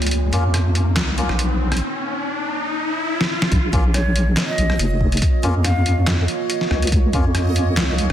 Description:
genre	deep dubstep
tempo	141 BPM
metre	4/4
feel	swing 55% on 16ths, half-time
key	Bb minor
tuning	A4 = 445 Hz
part	deep dark ambient pad	sustained chords	0.0-8.1 s	Bb3 to Db5	-28 LUFS	right 1 dB	chorus, built-in reverb
part	deep soft wobble bass	bass	0.0-8.1 s	F1 to F2	-18 LUFS	equal	chorus, tube saturation
part	trip hop sampler-style drum kit	drums	0.0-8.1 s	handclaps, hi-hat, rim click, snare drum	-23 LUFS	equal	overdrive, soft clipping on snare
part	riser	sound effects	0.0-3.5 s	none	-26 LUFS	left 1 dB	none
part	melodica	stabs	0.3-7.2 s	Bb3 to F4	-29 LUFS	left 2 dB	dub echo
part	electronic kick drum	drums	3.5-7.2 s	none	-18 LUFS	equal	none
part	backwards swelling texture	texture	4.4-8.1 s	Eb5	-31 LUFS	right 5 dB	built-in reverb
part	breathy ney	melody	3.9-6.0 s	Db5 to F5	-28 LUFS	equal	low-pass filter, dub echo
room	light reverb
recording	dense, heavily limited modern master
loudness	-17 LUFS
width	side -11 dB against mid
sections	0.0-3.5 A section; 3.5-8.1 B section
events	build-up 0.0-3.5; riser 0.0-3.5; filter sweep on ambient pad 0.0-3.5; break 1.8-3.5; drum fill 3.2-3.5; drop 3.5-8.1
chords	0.0 Bbm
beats	| 0.11 0.54 0.96 1.39 | 1.82 2.24 2.67 3.09 | 3.52 3.94 4.37 4.79 | 5.22 5.64 6.07 6.50 | 6.92 7.35 7.77

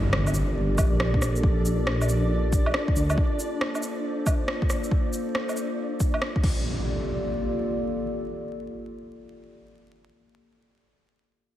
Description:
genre	future garage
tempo	138 BPM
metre	4/4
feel	swing 64% on 16ths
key	G minor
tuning	A4 = 440 Hz
part	warbly tape-like pad	sustained chords	0.0-9.8 s	Bb3 to D5	-31 LUFS	left 1 dB	chorus, built-in reverb, vintage 12-bit sampler grit, sidechain pumping
part	dark detuned saw bass	bass	0.0-3.2 s	G1 to D2	-24 LUFS	equal	sidechain pumping
part	impact	sound effects	0.0-1.4, 6.4-9.8 s	none	-33 LUFS	equal	none
part	flickering grainy texture	texture	0.3-6.7 s	D4 to D5	-35 LUFS	equal	built-in reverb
part	organic electronic drum kit	drums	0.1-6.5 s	crash cymbal, rim click, shaker, woodblock	-31 LUFS	right 1 dB	overdrive
part	electronic kick drum	drums	0.8-6.5 s	none	-24 LUFS	equal	overdrive
room	moderate church reverb, RT60 2.8 s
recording	dreamy mix soaked in reverb, vinyl crackle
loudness	-23 LUFS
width	side -12 dB against mid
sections	0.0-6.7 A section; 6.7-10.1 B section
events	impact 0.0-1.4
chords	0.0 Gm9; 3.2 Bbmaj9; 6.4 Gm9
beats	0.13 0.56 1.00 | 1.43 1.87 2.30 2.74 | 3.17 3.61 4.04 4.48 | 4.91 5.35 5.78 6.22 | 6.65 7.09 7.52 7.96 | 8.39 8.83 9.26 9.70

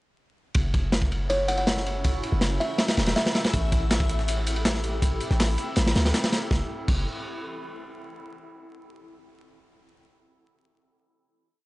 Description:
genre	drum and bass, jungle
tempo	161 BPM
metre	4/4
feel	straight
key	unclear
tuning	A4 = 439 Hz
part	crunchy breakbeat drum kit	drums	0.5-7.0 s	crash cymbal, kick drum, ride cymbal, snare drum	-25 LUFS	equal	none
part	granular cloud pad	sustained chords	1.1-6.7 s	C4 to A4	-36 LUFS	equal	built-in reverb
part	warm 808-style bass	bass	0.6-7.1 s	E1 to D2	-26 LUFS	equal	none
part	backwards swelling texture	texture	1.6-6.5 s	E5 to E6	-41 LUFS	left 5 dB	none
part	kalimba	melody	1.3-3.4 s	C#5 to F#5	-30 LUFS	equal	dub echo
part	breakbeat sampler-style drum kit	drums	3.5-6.4 s	hi-hat, snare drum	-36 LUFS	left 1 dB	high-pass filter on hats, high-pass filter on snare
room	small room ambience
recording	dry, gritty hardware recording, vinyl crackle, nothing above 10.6 kHz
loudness	-22 LUFS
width	side -20 dB against mid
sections	0.6-6.5 drop; 6.5-8.0 final chord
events	drop 0.6-6.5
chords	0.6 F#m7; 3.5 Am7; 6.5 F#m7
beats	| 0.55 0.93 1.30 1.67 | 2.04 2.42 2.79 3.16 | 3.53 3.91 4.28 4.65 | 5.03 5.40 5.77 6.14 | 6.52 6.89

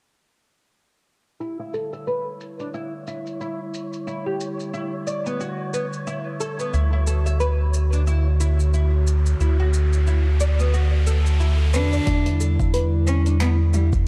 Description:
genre	organic downtempo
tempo	90 BPM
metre	4/4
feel	swing 57% on 16ths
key	E dorian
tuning	A4 = 440 Hz
part	warbly tape-like pad	sustained chords	1.4-14.1 s	D3 to F#4	-32 LUFS	equal	chorus, built-in reverb, sidechain pumping
part	oud	arpeggios	1.4-13.9 s	B3 to E5	-32 LUFS	equal	vintage 12-bit sampler grit, low-pass filter, digital delay
part	deep house drum kit	drums	1.4-14.0 s	finger snaps, hi-hat, shaker	-37 LUFS	equal	low-pass filter on perc, low-pass filter on hats, low-pass filter on snare, low-pass filter on room
part	wind-like tuned noise texture	texture	2.0-12.1 s	C#5	-41 LUFS	equal	built-in reverb
part	round analog bass	bass	6.7-14.1 s	D2 to E2	-21 LUFS	equal	sidechain pumping
part	riser	sound effects	7.8-12.1 s	none	-38 LUFS	equal	none
part	clear cello	melody	11.7-13.9 s	G3 to D4	-29 LUFS	equal	none
part	electronic kick drum	drums	12.1-14.0 s	none	-24 LUFS	equal	none
room	light reverb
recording	dark, warm production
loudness	-22 LUFS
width	mono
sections	1.4-12.1 A section; 12.1-14.1 B section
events	filter sweep on oud 1.4-12.1, 12.1-14.1; filter sweep on ambient pad 1.4-12.1; riser 7.8-12.1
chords	1.4 Em7; 6.7 Dmaj7; 12.1 Em7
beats	| 1.40 2.07 2.74 3.40 | 4.07 4.74 5.40 6.07 | 6.74 7.40 8.07 8.74 | 9.40 10.07 10.74 11.40 | 12.07 12.74 13.40 14.07

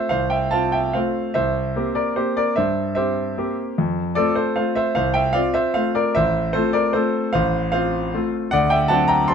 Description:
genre	classical, piano waltz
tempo	150 BPM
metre	3/4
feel	uneven beats, rubato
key	F major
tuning	A4 = 440 Hz
part	clear concert grand piano	solo	0.0-9.3 s	A1 to C6	-18 LUFS	equal	none
room	light reverb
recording	dark, warm production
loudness	-18 LUFS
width	side -7 dB against mid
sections	0.0-9.3 A section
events	none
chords	0.0 F; 1.4 C7; 3.8 F; 6.2 F/A; 8.5 D7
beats	| 0.10 0.52 0.94 | 1.35 1.75 2.17 | 2.57 2.96 3.37 | 3.78 4.17 4.58 | 4.97 5.35 5.76 | 6.16 6.55 6.95 | 7.34 7.73 8.13 | 8.53 8.90 9.30

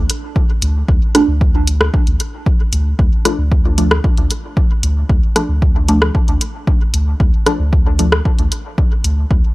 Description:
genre	dub techno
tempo	114 BPM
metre	4/4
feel	straight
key	D minor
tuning	A4 = 440 Hz
part	round analog bass	bass	0.0-9.4 s	D2	-16 LUFS	equal	sidechain pumping
part	deep house drum kit	drums	0.1-9.1 s	hi-hat, rim click	-17 LUFS	equal	dub echo
part	electronic kick drum	drums	0.4-9.4 s	none	-14 LUFS	equal	none
part	filtered dub chord stab	stabs	1.1-8.1 s	F3 to D4	-20 LUFS	right 1 dB	phaser, dub echo
room	little or no reverb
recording	dry, gritty hardware recording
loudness	-12 LUFS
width	side -20 dB against mid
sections	0.0-9.5 A section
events	filter sweep on synth stab 0.0-9.5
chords	0.0 Dm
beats	0.36 | 0.89 1.41 1.94 2.46 | 2.99 3.52 4.04 4.57 | 5.10 5.62 6.15 6.67 | 7.20 7.73 8.25 8.78 | 9.31

